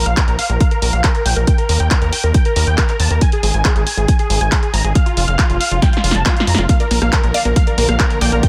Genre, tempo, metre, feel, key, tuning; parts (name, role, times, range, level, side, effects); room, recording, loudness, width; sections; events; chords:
uplifting trance; 138 BPM; 4/4; straight; Bb major; A4 = 440 Hz
big supersaw lead; melody; 0.0-8.5 s; F4 to Bb5; -23 LUFS; equal; phaser, sidechain pumping, low-pass filter, tape echo
gritty driven synth bass; bass; 0.0-8.4 s; F1 to F2; -19 LUFS; equal; sidechain pumping
punchy analog drum machine; drums; 0.1-8.5 s; handclaps, hi-hat, rim click, snare drum; -23 LUFS; equal; sidechain pumping on hats
electronic kick drum; drums; 0.2-8.5 s; -17 LUFS; equal
shimmering ambient pad; sustained chords; 7.4-8.5 s; D3 to Bb3; -27 LUFS; equal; chorus, built-in reverb, sidechain pumping
analog pluck; arpeggios; 6.7-8.5 s; G3 to D5; -25 LUFS; equal; chorus, sidechain pumping, tape echo
little or no reverb; -15 LUFS; mono
0.0-8.5 A section
drum fill 5.8-6.7
0.0 Bb5; 1.5 Eb5; 3.2 N.C.; 6.7 Bb